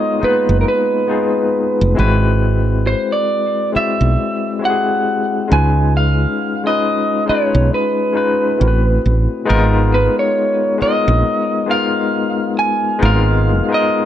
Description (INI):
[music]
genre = R&B, neo-soul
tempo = 68 BPM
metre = 4/4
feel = swing 59% on 16ths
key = G# dorian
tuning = A4 = 444 Hz
[part]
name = electric guitar through a small old amp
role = melody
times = 0.0-14.1 s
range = A#4 to G#5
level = -18 LUFS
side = right 2 dB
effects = none
[part]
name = barky tine electric piano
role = accompaniment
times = 0.0-14.1 s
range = G#3 to D5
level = -18 LUFS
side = left 5 dB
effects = overdrive, fast tremolo
[part]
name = woody fretless electric bass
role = bass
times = 0.2-13.6 s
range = E#1 to C#2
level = -14 LUFS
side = right 1 dB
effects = none
[sound]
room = little or no reverb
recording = dry, close 1970s-style studio recording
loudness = -13 LUFS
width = side -11 dB against mid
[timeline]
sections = 0.0-9.5 A section; 9.5-14.1 A section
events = none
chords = 0.0 G#m69; 2.0 G#7alt; 5.5 C#7; 8.6 Am69; 9.5 G#m69